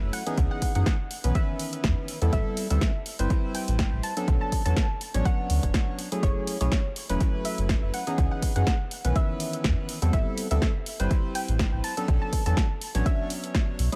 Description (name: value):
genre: deep house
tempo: 123 BPM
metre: 4/4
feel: swing 55% on 16ths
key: unclear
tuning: A4 = 437 Hz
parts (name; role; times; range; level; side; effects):
- percussive organ stab; stabs; 0.0-14.0 s; D#3 to C#5; -34 LUFS; equal; lush chorus, sidechain pumping, dub echo
- sub bass with octave; bass; 0.0-13.9 s; E1 to F#2; -27 LUFS; equal; sidechain pumping
- soft round pluck; melody; 0.1-13.9 s; C#5 to A5; -38 LUFS; equal; analog chorus, cassette tape, dub echo
- punchy analog drum machine; drums; 0.1-14.0 s; hi-hat, snare drum; -36 LUFS; equal; overdrive, studio reverb, dub echo
- electronic kick drum; drums; 0.4-13.7 s; none; -28 LUFS; equal; overdrive, studio reverb
room: little or no reverb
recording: echo-heavy mix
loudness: -26 LUFS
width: mono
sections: 0.0-14.0 A section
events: none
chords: 0.4 C#m7; 2.3 Am7; 4.3 Bm7; 6.2 F#m7; 8.2 C#m7; 10.1 Am7; 12.1 Bm7